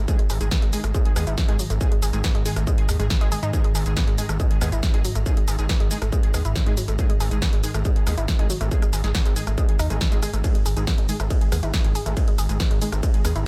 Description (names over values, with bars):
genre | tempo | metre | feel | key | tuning
driving peak-time techno | 139 BPM | 4/4 | straight | unclear | A4 = 439 Hz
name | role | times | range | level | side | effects
analog pluck | riff | 0.0-13.4 s | F#3 to G#4 | -35 LUFS | equal | chorus, sidechain pumping, delay
gritty driven synth bass | bass | 0.0-13.4 s | G#1 to G#2 | -27 LUFS | equal | sidechain pumping
swarming drone | drone | 0.0-13.5 s | G#2 to D#3 | -35 LUFS | equal | none
rave stab | stabs | 0.1-13.3 s | D#3 to G#4 | -35 LUFS | equal | chorus, built-in reverb, sidechain pumping, digital delay
electronic kick drum | drums | 0.1-13.1 s | none | -23 LUFS | equal | distortion
punchy analog drum machine | drums | 0.1-13.4 s | hi-hat, ride cymbal, rim click, shaker, snare drum | -32 LUFS | equal | none
room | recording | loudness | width
digital ambience | none | -22 LUFS | mono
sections
0.0-13.5 A section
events
none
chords
0.0 G#5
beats
| 0.08 0.51 0.94 1.38 | 1.81 2.24 2.67 3.10 | 3.53 3.97 4.40 4.83 | 5.26 5.69 6.12 6.56 | 6.99 7.42 7.85 8.28 | 8.71 9.15 9.58 10.01 | 10.44 10.87 11.30 11.74 | 12.17 12.60 13.03 13.46